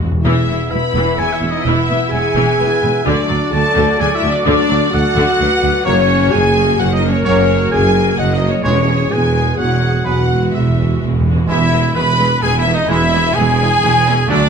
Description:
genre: cinematic, heroic adventure film score.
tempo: 128 BPM.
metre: 3/4.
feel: straight.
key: unclear.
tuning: A4 = 439 Hz.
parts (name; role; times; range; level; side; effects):
rich symphonic viola section; accompaniment; 0.0-14.4 s; D3 to G#4; -22 LUFS; equal; none.
rich studio double bass section; bass; 0.0-14.5 s; E1 to E2; -20 LUFS; right 3 dB; none.
timpani; percussion; 0.0-0.9, 8.6-12.2 s; E2; -21 LUFS; equal; none.
clear oboe; second line; 0.2-11.0 s; C#5 to B5; -24 LUFS; right 2 dB; none.
warm clarinet; second line; 0.2-14.5 s; D4 to E5; -25 LUFS; left 1 dB; none.
warm symphonic violin section; second line; 0.2-14.5 s; C#5 to B5; -21 LUFS; left 2 dB; none.
mellow French horn section; sustained chords; 0.2-14.5 s; B3 to B4; -19 LUFS; left 4 dB; none.
clear trumpet; stabs; 0.2-14.5 s; D4 to E5; -22 LUFS; right 2 dB; none.
rich symphonic violin section; melody; 0.3-14.4 s; B3 to B5; -24 LUFS; left 3 dB; none.
bright trombone section; sustained chords; 0.3-14.4 s; D3 to B3; -26 LUFS; right 4 dB; none.
dark tuba; bass; 0.3-14.5 s; E1 to D2; -22 LUFS; right 5 dB; none.
rich symphonic cello section; bass; 0.3-14.5 s; D2 to F#2; -22 LUFS; right 2 dB; none.
mellow silver concert flute; second line; 11.5-14.5 s; D5 to B5; -22 LUFS; equal; none.
room: moderate scoring stage reverb, RT60 1.6 s.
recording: close, detailed microphones.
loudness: -12 LUFS.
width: side -6 dB against mid.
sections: 0.3-11.5 A section; 11.5-14.5 B section.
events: timpani fill 0.0, 10.1-11.5.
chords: 0.3 E; 3.1 D; 5.9 F#; 8.6 C#m/E; 10.1 Eadd9; 11.5 E.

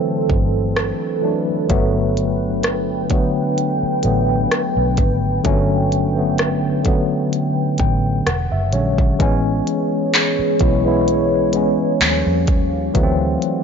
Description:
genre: contemporary R&B.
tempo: 64 BPM.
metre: 4/4.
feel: swing 54% on 16ths.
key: A mixolydian.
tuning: A4 = 440 Hz.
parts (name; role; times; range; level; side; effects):
mellow tine electric piano; accompaniment; 0.0-13.6 s; D3 to G5; -19 LUFS; left 2 dB; medium stereo tremolo.
deep dark ambient pad; sustained chords; 0.0-13.6 s; D3 to G5; -22 LUFS; right 2 dB; chorus, built-in reverb.
vintage muted fingered electric bass; bass; 0.3-13.4 s; E1 to E#2; -22 LUFS; equal; none.
glitchy drum kit; drums; 0.3-13.6 s; handclaps, hi-hat, kick drum, rim click; -19 LUFS; equal; none.
room: light reverb.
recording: nothing above 7.5 kHz.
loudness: -15 LUFS.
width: side -6 dB against mid.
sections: 0.0-9.2 A section; 9.2-13.6 B section.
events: tine electric piano fill 7.3-9.2.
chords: 0.0 D7; 1.7 Gmaj7; 8.3 E13; 9.2 Amaj9; 12.0 D#9; 13.0 D7.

